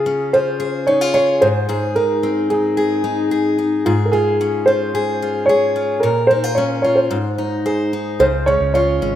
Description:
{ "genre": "acoustic pop", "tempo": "111 BPM", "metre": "4/4", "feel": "straight", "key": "Db major", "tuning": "A4 = 439 Hz", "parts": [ { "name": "dark upright piano", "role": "melody", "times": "0.0-9.2 s", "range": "F4 to Db5", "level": "-17 LUFS", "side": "right 1 dB", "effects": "none" }, { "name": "picked steel-string acoustic guitar", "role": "accompaniment", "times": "0.0-9.2 s", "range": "Ab2 to C5", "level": "-19 LUFS", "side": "left 3 dB", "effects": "none" }, { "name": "flamenco guitar", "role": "arpeggios", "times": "8.2-9.2 s", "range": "Ab3 to F4", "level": "-25 LUFS", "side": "right 10 dB", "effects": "none" }, { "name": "fingered electric bass", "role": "bass", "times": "8.2-9.2 s", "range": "Ab1 to Db2", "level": "-21 LUFS", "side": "equal", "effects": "none" } ], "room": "moderate lush hall reverb, RT60 2.4 s", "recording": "rough home demo mix", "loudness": "-15 LUFS", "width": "side -11 dB against mid", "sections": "0.0-8.2 A section", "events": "none", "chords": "0.0 Db; 1.4 Ab; 3.9 Db/Ab; 6.0 Bbm; 7.1 Ab; 8.2 Db", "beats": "0.06 0.60 1.15 | 1.69 2.23 2.78 3.32 | 3.86 4.41 4.95 5.49 | 6.03 6.58 7.12 7.66 | 8.20 8.74" }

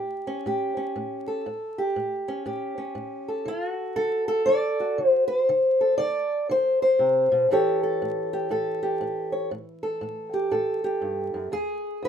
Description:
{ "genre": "acoustic country blues, solo or duo", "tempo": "119 BPM", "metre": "4/4", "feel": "swing 62% on 8ths", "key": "A mixolydian", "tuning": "A4 = 440 Hz", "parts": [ { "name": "fingerpicked old ladder-braced acoustic guitar", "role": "solo", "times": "0.0-12.1 s", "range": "E2 to D5", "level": "-23 LUFS", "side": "equal", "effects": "none" } ], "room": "moderate studio reverb, RT60 0.7 s", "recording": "minimal, uncompressed stereo recording, vinyl crackle", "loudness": "-23 LUFS", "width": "side -8 dB against mid", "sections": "0.0-12.1 A section", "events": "none", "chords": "0.0 A7; 3.5 D7; 7.5 A7; 11.5 E", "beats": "0.45 0.95 | 1.46 1.96 2.46 2.97 | 3.47 3.98 4.48 4.98 | 5.49 5.99 6.49 6.99 | 7.50 8.00 8.50 9.01 | 9.51 10.01 10.51 11.02 | 11.52 12.02" }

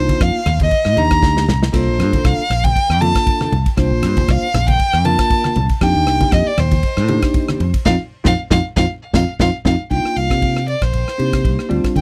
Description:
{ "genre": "electric jazz fusion", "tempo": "118 BPM", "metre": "4/4", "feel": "swing 54% on 16ths", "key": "unclear", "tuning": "A4 = 443 Hz", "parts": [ { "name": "warm violin", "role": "melody", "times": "0.0-12.0 s", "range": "C5 to Bb5", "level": "-22 LUFS", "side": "equal", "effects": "tape echo" }, { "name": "bell-like tine electric piano", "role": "accompaniment", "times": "0.0-12.0 s", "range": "G3 to C5", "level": "-23 LUFS", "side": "equal", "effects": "analog chorus" }, { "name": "fingered electric bass", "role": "bass", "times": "0.0-12.0 s", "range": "Bb1 to D3", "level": "-20 LUFS", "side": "equal", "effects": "none" }, { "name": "modern studio drum kit", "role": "drums", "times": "0.1-12.0 s", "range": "crash cymbal, kick drum, ride cymbal, rim click, snare drum", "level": "-21 LUFS", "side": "equal", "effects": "none" }, { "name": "congas", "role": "percussion", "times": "0.1-9.8 s", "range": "none", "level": "-26 LUFS", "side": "equal", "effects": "none" } ], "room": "little or no reverb", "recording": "dry, close 1970s-style studio recording", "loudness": "-16 LUFS", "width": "mono", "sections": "0.0-9.9 A section; 9.9-12.0 B section", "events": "drum fill 1.2-1.7; band accent 7.9-9.9", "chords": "0.0 F13sus4; 1.7 C13sus4; 5.8 F13sus4; 9.9 Cm11", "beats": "0.21 0.72 1.23 | 1.74 2.25 2.76 3.27 | 3.78 4.29 4.80 5.31 | 5.82 6.33 6.84 7.35 | 7.86 8.37 8.88 9.39 | 9.90 10.42 10.93 11.44 | 11.95" }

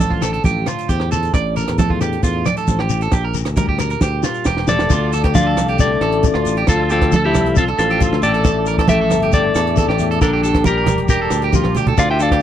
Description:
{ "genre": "highlife guitar band", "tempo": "135 BPM", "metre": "4/4", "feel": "straight", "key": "D minor", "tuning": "A4 = 440 Hz", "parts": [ { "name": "nylon-string guitar", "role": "accompaniment", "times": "0.0-12.4 s", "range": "A2 to C5", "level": "-27 LUFS", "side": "left 9 dB", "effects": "none" }, { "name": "electric guitar at the edge of break-up", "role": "arpeggios", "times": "0.0-12.4 s", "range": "F4 to D5", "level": "-22 LUFS", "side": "right 7 dB", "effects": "tape echo" }, { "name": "fingered electric bass", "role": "bass", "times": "0.0-12.4 s", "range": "E1 to E2", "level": "-20 LUFS", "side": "equal", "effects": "none" }, { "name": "compact cocktail drum kit", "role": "drums", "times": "0.0-12.4 s", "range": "crash cymbal, hi-hat, kick drum, rim click, snare drum", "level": "-19 LUFS", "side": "equal", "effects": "none" }, { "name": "congas", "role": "percussion", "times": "0.0-12.3 s", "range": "none", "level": "-21 LUFS", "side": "right 4 dB", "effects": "none" }, { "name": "shekere", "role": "percussion", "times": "0.0-12.3 s", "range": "none", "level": "-25 LUFS", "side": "left 10 dB", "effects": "none" }, { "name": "clean electric guitar", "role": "melody", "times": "4.7-12.4 s", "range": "D4 to G5", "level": "-19 LUFS", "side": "left 1 dB", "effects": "none" }, { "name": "breathy trombone", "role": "second line", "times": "4.7-12.4 s", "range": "D3 to E4", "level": "-24 LUFS", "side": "left 17 dB", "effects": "none" }, { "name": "mellow tonewheel organ", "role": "sustained chords", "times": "4.9-12.4 s", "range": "D5 to E6", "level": "-30 LUFS", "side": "equal", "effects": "chorus vibrato, fast rotary speaker" } ], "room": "little or no reverb", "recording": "dry, close 1970s-style studio recording", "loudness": "-14 LUFS", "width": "side -10 dB against mid", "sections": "0.0-4.9 A section; 4.9-12.4 B section", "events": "drum fill 4.0-4.9, 11.6-12.0", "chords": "0.0 Asus4; 3.1 Gm/Bb; 4.9 Dm; 8.4 Asus4; 10.2 Gm", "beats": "0.00 0.45 0.89 | 1.34 1.79 2.23 2.68 | 3.13 3.57 4.02 4.46 | 4.91 5.35 5.79 6.24 | 6.68 7.12 7.57 8.01 | 8.45 8.89 9.33 9.77 | 10.21 10.66 11.10 11.54 | 11.98 12.42" }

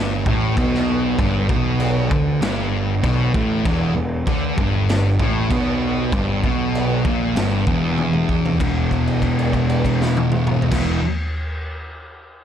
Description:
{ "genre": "stoner and doom metal", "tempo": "97 BPM", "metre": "4/4", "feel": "straight", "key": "E minor", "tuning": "A4 = 439 Hz", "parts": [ { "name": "thick fuzz guitar", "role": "riff", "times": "0.0-11.0 s", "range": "E2 to E3", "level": "-22 LUFS", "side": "left 8 dB", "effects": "distortion" }, { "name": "thick fuzz guitar", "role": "riff", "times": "0.0-11.0 s", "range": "E2 to E3", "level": "-22 LUFS", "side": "right 7 dB", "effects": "distortion" }, { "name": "fuzz picked electric bass", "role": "bass", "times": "0.0-11.0 s", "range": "E1 to D2", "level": "-26 LUFS", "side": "equal", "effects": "overdrive" }, { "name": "raw garage drum kit", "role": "drums", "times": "0.3-10.9 s", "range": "crash cymbal, kick drum, snare drum, toms", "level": "-23 LUFS", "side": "equal", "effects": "none" } ], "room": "light reverb, studio reverb", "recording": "dark, warm production", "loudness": "-17 LUFS", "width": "side -9 dB against mid", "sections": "0.0-8.6 A section; 8.6-11.1 B section", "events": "drum fill 8.0-8.6; held note 8.6-10.7", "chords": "0.0 Em; 8.6 E5", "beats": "0.56 | 1.18 1.80 2.42 3.03 | 3.65 4.27 4.88 5.50 | 6.12 6.74 7.36 7.98 | 8.60 9.23 9.85 10.47" }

